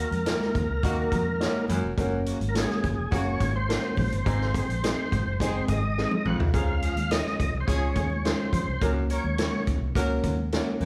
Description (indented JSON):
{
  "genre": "uptempo 1960s-style soul",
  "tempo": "105 BPM",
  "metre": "4/4",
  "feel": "straight",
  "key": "unclear",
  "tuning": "A4 = 439 Hz",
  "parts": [
    { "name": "overdriven tonewheel organ", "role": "melody", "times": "0.0-9.6 s", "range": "Ab4 to Gb5", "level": "-34 LUFS", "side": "equal", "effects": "chorus vibrato, slow rotary speaker" },
    { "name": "warm horn section", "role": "second line", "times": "0.0-10.4 s", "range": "Db3 to Bb4", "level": "-37 LUFS", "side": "equal", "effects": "none" },
    { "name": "clear upright piano", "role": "accompaniment", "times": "0.0-10.9 s", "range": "Ab3 to Db5", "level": "-34 LUFS", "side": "equal", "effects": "none" },
    { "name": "vintage muted fingered electric bass", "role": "bass", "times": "0.0-10.9 s", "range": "F1 to Gb2", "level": "-32 LUFS", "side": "equal", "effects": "none" },
    { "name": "vintage drum kit", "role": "drums", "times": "0.1-10.9 s", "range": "hi-hat, kick drum, snare drum, toms", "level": "-31 LUFS", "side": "equal", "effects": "none" },
    { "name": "congas", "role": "percussion", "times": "0.1-10.9 s", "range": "none", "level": "-40 LUFS", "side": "equal", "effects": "none" },
    { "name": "raspy baritone saxophone", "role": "riff", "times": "1.7-10.9 s", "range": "F2 to Bb2", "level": "-37 LUFS", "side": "equal", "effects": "none" }
  ],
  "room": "moderate large studio reverb, RT60 1.1 s",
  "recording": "band playing live in one room",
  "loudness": "-26 LUFS",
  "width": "mono",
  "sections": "0.0-10.9 A section",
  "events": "drum fill 6.0-6.5",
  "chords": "0.0 Ebm; 2.0 Gb; 4.3 Ab; 6.5 Db; 8.8 Gb"
}